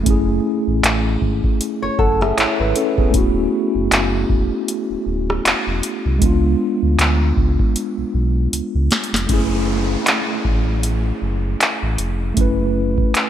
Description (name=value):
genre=contemporary R&B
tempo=78 BPM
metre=4/4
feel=swing 58% on 16ths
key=F# minor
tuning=A4 = 440 Hz
part: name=mellow tine electric piano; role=accompaniment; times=0.0-13.3 s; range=G#3 to F#5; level=-20 LUFS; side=equal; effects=medium stereo tremolo
part: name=sub bass with octave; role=bass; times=0.0-13.0 s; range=C#1 to D2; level=-20 LUFS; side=equal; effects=none
part: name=booming analog drum machine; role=drums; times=0.1-13.3 s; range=handclaps, hi-hat, kick drum, rim click, snare drum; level=-18 LUFS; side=equal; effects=gated reverb
part: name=flamenco guitar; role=arpeggios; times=1.8-3.1 s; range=G#4 to C#5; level=-23 LUFS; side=left 1 dB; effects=digital delay
part: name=downlifter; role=sound effects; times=9.3-13.3 s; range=none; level=-30 LUFS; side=right 1 dB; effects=none
room=light reverb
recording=bright 1980s-style digital production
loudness=-16 LUFS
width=side -10 dB against mid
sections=0.0-9.3 A section; 9.3-13.3 B section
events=drum fill 7.8-9.3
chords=0.0 F#m9; 3.1 Dmaj7; 6.2 C#7b9; 9.3 F#m9